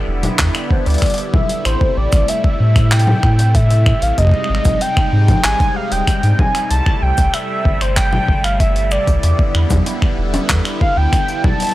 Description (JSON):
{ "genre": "IDM", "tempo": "95 BPM", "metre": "4/4", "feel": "straight", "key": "unclear", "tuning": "A4 = 439 Hz", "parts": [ { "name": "phased analog pad", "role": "sustained chords", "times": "0.0-11.7 s", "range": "C3 to E4", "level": "-23 LUFS", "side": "equal", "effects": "phaser, chorus, vintage 12-bit sampler grit" }, { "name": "warm sub bass", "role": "bass", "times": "0.1-11.1 s", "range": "Eb1 to A2", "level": "-15 LUFS", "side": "equal", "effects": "transformer saturation" }, { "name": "jungle sampler-style drum kit", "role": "drums", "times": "0.2-11.7 s", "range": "congas, finger snaps, handclaps, hi-hat, shaker", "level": "-21 LUFS", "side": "left 1 dB", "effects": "overdrive" }, { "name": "electronic kick drum", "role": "drums", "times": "0.4-11.6 s", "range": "none", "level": "-16 LUFS", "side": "equal", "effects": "overdrive" }, { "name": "warm velvety synth lead", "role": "melody", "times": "0.7-11.7 s", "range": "C5 to A5", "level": "-20 LUFS", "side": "equal", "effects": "chorus, analog delay" } ], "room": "little or no reverb", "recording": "dry, gritty hardware recording", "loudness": "-13 LUFS", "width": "side -16 dB against mid", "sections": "0.0-11.7 A section", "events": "none", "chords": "0.0 Em7; 1.7 Am7; 4.2 Abmaj7; 6.7 C6; 9.2 Em7", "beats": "0.39 1.02 | 1.65 2.29 2.92 3.55 | 4.18 4.81 5.44 6.08 | 6.71 7.34 7.97 8.60 | 9.23 9.86 10.50 11.13" }